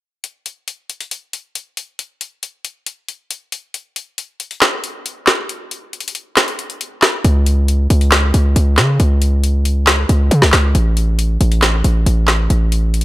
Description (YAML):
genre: hip hop, trap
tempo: 137 BPM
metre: 4/4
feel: half-time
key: unclear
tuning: A4 = 440 Hz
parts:
  - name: trap drum kit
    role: drums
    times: 0.2-13.0 s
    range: handclaps, hi-hat, snare drum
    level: -16 LUFS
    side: equal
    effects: none
  - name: hard-hitting 808-style bass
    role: bass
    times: 7.2-13.0 s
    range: A1 to C#3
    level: -13 LUFS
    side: equal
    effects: none
room: digital ambience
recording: dark, warm production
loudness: -12 LUFS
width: side -17 dB against mid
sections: 0.2-7.2 A section; 7.2-13.0 B section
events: none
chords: none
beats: | 0.24 0.68 1.11 1.55 | 1.99 2.43 2.87 3.30 | 3.74 4.18 4.62 5.06 | 5.49 5.93 6.37 6.81 | 7.25 7.68 8.12 8.56 | 9.00 9.44 9.87 10.31 | 10.75 11.19 11.62 12.06 | 12.50 12.94